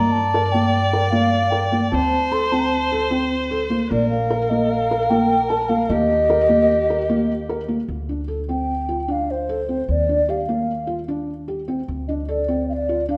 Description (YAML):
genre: contemporary instrumental, chamber music in an uneven meter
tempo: 151 BPM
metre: 5/4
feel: straight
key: unclear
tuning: A4 = 438 Hz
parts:
  - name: mellow hollow wooden flute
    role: melody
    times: 0.0-13.2 s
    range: C5 to C6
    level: -23 LUFS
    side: equal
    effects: none
  - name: warm viola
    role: second line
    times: 0.0-7.7 s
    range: G4 to D5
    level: -27 LUFS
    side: equal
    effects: none
  - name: felt-muted upright piano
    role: arpeggios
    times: 0.0-13.2 s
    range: Bb3 to Bb4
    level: -25 LUFS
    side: equal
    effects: none
  - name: upright bass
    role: bass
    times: 0.0-13.2 s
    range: Bb1 to G2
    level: -29 LUFS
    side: equal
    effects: none
room: wet recital hall reverb, RT60 1.3 s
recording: none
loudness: -20 LUFS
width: mono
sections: 0.0-7.9 A section; 7.9-13.2 B section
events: none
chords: 0.0 Gm7; 1.9 D5; 3.9 Bb5; 5.9 Eb; 7.9 D7(no3); 9.9 Ebmaj7sus2; 11.9 D7(no3)